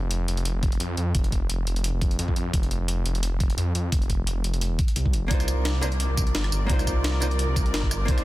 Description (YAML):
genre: liquid drum and bass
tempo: 173 BPM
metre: 4/4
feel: swing 54% on 16ths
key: unclear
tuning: A4 = 440 Hz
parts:
  - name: swelling detuned saw bass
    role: bass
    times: 0.0-8.2 s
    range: Eb1 to F2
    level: -25 LUFS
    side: equal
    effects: tube saturation
  - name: breakbeat sampler-style drum kit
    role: drums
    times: 0.1-8.2 s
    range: hi-hat, rim click, snare drum, tambourine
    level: -31 LUFS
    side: equal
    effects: none
  - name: electronic kick drum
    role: drums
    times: 0.6-8.2 s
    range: none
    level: -24 LUFS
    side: equal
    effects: none
  - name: archtop guitar, miked and amplified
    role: accompaniment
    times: 5.3-8.2 s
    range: Bb3 to C5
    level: -31 LUFS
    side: right 1 dB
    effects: digital delay
  - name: warm chamber string section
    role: sustained chords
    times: 5.3-8.2 s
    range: Eb3 to D5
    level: -33 LUFS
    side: equal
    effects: sidechain pumping
room: little or no reverb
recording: dense, heavily limited modern master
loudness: -22 LUFS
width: side -17 dB against mid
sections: 0.0-8.2 A section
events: none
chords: 0.0 F5; 5.3 Cm11